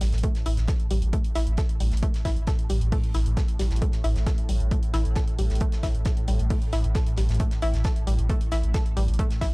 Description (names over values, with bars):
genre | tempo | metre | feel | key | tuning
driving peak-time techno | 134 BPM | 4/4 | straight | unclear | A4 = 439 Hz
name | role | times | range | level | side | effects
analog pluck | riff | 0.0-9.5 s | G3 to A4 | -33 LUFS | left 1 dB | chorus, cassette tape, sidechain pumping, tape echo
saturated sub bass | bass | 0.0-9.5 s | A1 | -24 LUFS | equal | overdrive, sidechain pumping, low-pass filter
swarming drone | drone | 0.0-9.5 s | A2 | -34 LUFS | left 1 dB | built-in reverb, sidechain pumping
electronic hi-hat | drums | 0.0-9.5 s | none | -42 LUFS | right 1 dB | sidechain pumping on hats, sidechain pumping on cymbals
tight metal drum kit | drums | 0.0-9.5 s | hi-hat, snare drum | -44 LUFS | right 1 dB | high-pass filter on hats, high-pass filter on snare, high-pass filter on room
electronic kick drum | drums | 0.2-9.5 s | none | -25 LUFS | equal | none
room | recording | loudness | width
digital ambience | dry, gritty hardware recording | -22 LUFS | side -25 dB against mid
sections
0.0-9.5 A section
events
filter sweep on synth arpeggio sound 0.0-9.5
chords
0.0 A5